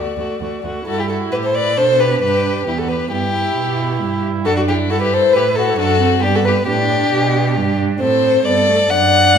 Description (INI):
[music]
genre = quick classical-period movement for string quartet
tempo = 134 BPM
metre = 4/4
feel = straight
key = G major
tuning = A4 = 444 Hz
[part]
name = rich violin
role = melody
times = 0.0-9.4 s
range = D4 to D5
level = -22 LUFS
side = left 10 dB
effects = none
[part]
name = warm violin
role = second line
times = 0.0-9.4 s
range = F#4 to F#5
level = -16 LUFS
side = left 2 dB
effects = none
[part]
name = warm viola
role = accompaniment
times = 0.0-9.4 s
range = A3 to E4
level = -23 LUFS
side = right 7 dB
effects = none
[part]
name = rich cello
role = bass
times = 0.0-9.4 s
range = D2 to B2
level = -21 LUFS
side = right 5 dB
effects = none
[sound]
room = wet recital hall reverb, RT60 1.4 s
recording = minimal, uncompressed stereo recording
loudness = -14 LUFS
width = side -7 dB against mid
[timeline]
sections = 0.9-9.4 A section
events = none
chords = 0.0 D; 0.9 G; 2.7 Em; 4.5 D/F#; 6.2 G; 8.0 D7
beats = 0.41 | 0.87 1.32 1.77 2.22 | 2.67 3.11 3.56 4.01 | 4.45 4.90 5.34 5.78 | 6.23 6.67 7.11 7.56 | 8.01 8.45 8.90 9.35